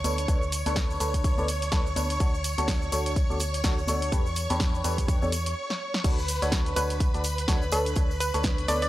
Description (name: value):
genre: piano house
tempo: 125 BPM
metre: 4/4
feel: swing 58% on 16ths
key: D major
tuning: A4 = 443 Hz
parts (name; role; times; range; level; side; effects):
- string machine, violins; sustained chords; 0.0-8.9 s; B4 to C#6; -33 LUFS; equal; ensemble chorus, sidechain pumping
- barking FM electric piano; riff; 0.0-8.9 s; D4 to D5; -32 LUFS; equal; phaser, sidechain pumping, analog delay
- organ-like FM bass; bass; 0.0-8.9 s; D2 to E2; -30 LUFS; equal; sidechain pumping
- punchy analog drum machine; drums; 0.0-8.9 s; cabasa, crash cymbal, hi-hat, snare drum; -32 LUFS; equal; overdrive
- congas and tambourine; percussion; 0.0-8.9 s; none; -38 LUFS; left 3 dB; none
- electronic kick drum; drums; 0.3-8.6 s; none; -26 LUFS; equal; none
- hollow square pluck; melody; 6.8-8.9 s; A4 to D5; -30 LUFS; equal; chorus
room: digital ambience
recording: dry, gritty hardware recording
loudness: -24 LUFS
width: side -15 dB against mid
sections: 0.0-6.0 A section; 6.0-8.9 B section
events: break 5.6-6.0; drum fill 5.7-6.0; drop 6.0-8.9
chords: 0.0 Bm9/D; 2.2 Dmaj7; 4.1 A9sus4/E; 6.0 Dmaj7; 7.7 Bm9/D